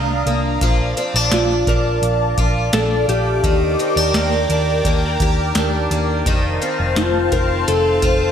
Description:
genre	dream pop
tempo	85 BPM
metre	4/4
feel	straight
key	Bb major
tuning	A4 = 437 Hz
part	phased analog pad	sustained chords	0.0-8.3 s	D4 to Eb6	-22 LUFS	equal	phaser, chorus
part	picked twelve-string acoustic guitar	arpeggios	0.0-8.3 s	Eb3 to G4	-22 LUFS	equal	wide subtle chorus, digital delay
part	vintage muted picked electric bass	bass	0.0-8.3 s	F1 to Eb2	-21 LUFS	equal	none
part	booming analog drum machine	drums	0.3-8.2 s	hi-hat, kick drum, snare drum	-20 LUFS	equal	overdrive, gated reverb
part	electric slide guitar	melody	1.3-8.3 s	F4 to Bb4	-21 LUFS	left 2 dB	analog chorus, digital delay
part	vibraphone with medium hard mallets	texture	1.3-2.0 s	none	barely audible	none	none
room	moderate plate reverb, RT60 3.5 s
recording	bright 1980s-style digital production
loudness	-15 LUFS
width	side -8 dB against mid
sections	0.0-8.3 A section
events	none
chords	0.0 Cm11; 0.6 Bbmaj7; 3.4 Ebmaj7; 6.3 F7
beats	| 0.62 1.32 2.03 2.73 | 3.44 4.14 4.85 5.56 | 6.26 6.97 7.67

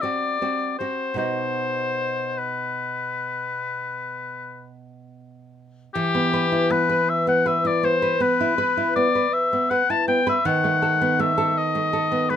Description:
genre	romantic duo for oboe and classical guitar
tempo	49-54 BPM (dotted quarters)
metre	12/8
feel	rubato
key	E minor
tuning	A4 = 443 Hz
part	clear oboe	melody	0.0-12.4 s	G4 to A5	-22 LUFS	left 4 dB	none
part	nylon-string guitar	accompaniment	0.0-12.4 s	B2 to B4	-24 LUFS	right 2 dB	none
room	light reverb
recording	minimal, uncompressed stereo recording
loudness	-20 LUFS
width	side -9 dB against mid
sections	0.0-6.0 A section; 6.0-12.4 B section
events	none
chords	0.0 F#(b5, no3); 1.2 B; 6.0 Em; 10.4 B7/D#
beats	0.02 | 1.19 2.37 3.57 4.75 | 5.95 7.08 8.20 9.32 | 10.44 11.56

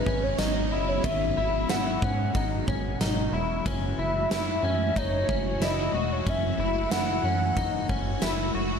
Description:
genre	dream pop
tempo	92 BPM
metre	4/4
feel	straight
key	unclear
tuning	A4 = 438 Hz
part	warbly nostalgic lead	melody	0.0-8.2 s	B4 to F#5	-30 LUFS	left 1 dB	chorus, ping-pong delay
part	phased string machine	sustained chords	0.0-8.8 s	B2 to F#4	-31 LUFS	right 1 dB	ensemble chorus, phaser
part	electric guitar at the edge of break-up	arpeggios	0.0-8.8 s	D#3 to F#4	-32 LUFS	left 3 dB	analog chorus, ping-pong delay
part	chorused synth bass	bass	0.0-8.8 s	E1 to G#2	-31 LUFS	equal	none
part	huge arena drum kit	drums	0.1-8.4 s	kick drum, ride cymbal, snare drum, tambourine	-31 LUFS	right 1 dB	none
room	light reverb, small room ambience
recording	lossy compression artefacts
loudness	-24 LUFS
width	side -6 dB against mid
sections	0.0-8.8 A section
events	none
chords	0.0 Emaj9; 3.7 F#m9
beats	0.39 | 1.04 1.70 2.35 3.00 | 3.65 4.30 4.96 5.61 | 6.26 6.91 7.57 8.22

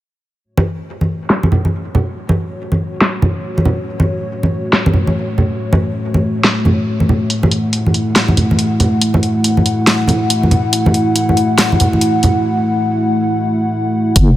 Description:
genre	deep dubstep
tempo	140 BPM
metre	4/4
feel	swing 62% on 16ths, half-time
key	F# minor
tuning	A4 = 440 Hz
part	dark analog pad	sustained chords	1.3-14.4 s	A3 to F#5	-16 LUFS	equal	chorus
part	congas	percussion	0.6-12.3 s	none	-15 LUFS	right 1 dB	none
part	deep house drum kit	drums	1.3-14.3 s	hi-hat, snare drum	-16 LUFS	equal	low-pass filter on snare, studio reverb, low-pass filter on hats
part	deep soft wobble bass	bass	14.2-14.4 s	F#1	-10 LUFS	equal	chorus
part	electronic kick drum	drums	14.2-14.3 s	none	-12 LUFS	equal	studio reverb
room	light reverb, digital ambience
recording	none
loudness	-13 LUFS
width	side -14 dB against mid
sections	0.4-14.2 A section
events	filter sweep on drum 0.4-14.2; filter sweep on analog synth pad 0.4-14.2; break 12.4-14.2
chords	0.4 F#m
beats	| 0.44 0.87 1.30 1.73 | 2.16 2.59 3.02 3.44 | 3.87 4.30 4.73 5.16 | 5.59 6.01 6.44 6.87 | 7.30 7.73 8.16 8.59 | 9.02 9.44 9.87 10.30 | 10.73 11.16 11.59 12.02 | 12.44 12.87 13.30 13.73 | 14.16

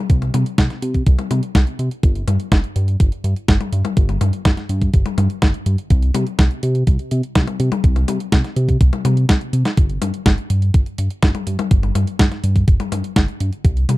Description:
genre	italo disco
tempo	124 BPM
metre	4/4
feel	straight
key	unclear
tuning	A4 = 435 Hz
part	chorused synth bass	bass	0.1-14.0 s	G1 to C3	-18 LUFS	equal	none
part	clean 12-bit digital drum machine	drums	0.1-14.0 s	hi-hat, snare drum, toms	-21 LUFS	left 2 dB	none
part	electronic kick drum	drums	0.1-13.7 s	none	-14 LUFS	equal	none
room	little or no reverb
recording	dry, close 1970s-style studio recording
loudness	-15 LUFS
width	side -18 dB against mid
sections	0.0-14.0 A section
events	drum fill 9.3-9.8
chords	none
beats	| 0.10 0.58 1.07 1.55 | 2.03 2.52 3.00 3.48 | 3.97 4.45 4.94 5.42 | 5.90 6.39 6.87 7.36 | 7.84 8.32 8.81 9.29 | 9.78 10.26 10.74 11.23 | 11.71 12.20 12.68 13.16 | 13.65

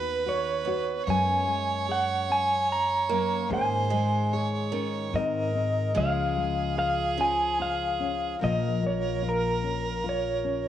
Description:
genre	acoustic folk-pop ballad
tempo	74 BPM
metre	3/4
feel	straight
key	Db major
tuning	A4 = 443 Hz
part	electric guitar through a small old amp	melody	0.0-10.7 s	Bb4 to Bb5	-27 LUFS	right 1 dB	tremolo, cassette tape
part	clear violin	second line	0.0-10.7 s	Ab4 to Db5	-34 LUFS	right 8 dB	cassette tape
part	nylon-string guitar	accompaniment	0.0-10.7 s	Gb2 to Ab4	-32 LUFS	left 7 dB	cassette tape
part	upright bass	bass	0.0-10.7 s	Bb1 to Ab2	-33 LUFS	right 1 dB	none
part	picked old ladder-braced acoustic guitar	arpeggios	0.6-8.8 s	Eb3 to Cb4	-35 LUFS	right 8 dB	cassette tape
room	moderate spring reverb, RT60 1.8 s, studio reverb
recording	home recording on cassette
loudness	-24 LUFS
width	side -11 dB against mid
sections	0.0-10.7 A section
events	none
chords	0.0 Cbadd9/Eb; 1.1 Gbadd9; 3.5 Absus4; 5.1 Ab; 6.0 Db; 8.4 Bbm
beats	0.25 | 1.06 1.88 2.69 | 3.50 4.32 5.13 | 5.96 6.77 7.59 | 8.40 9.22 10.03

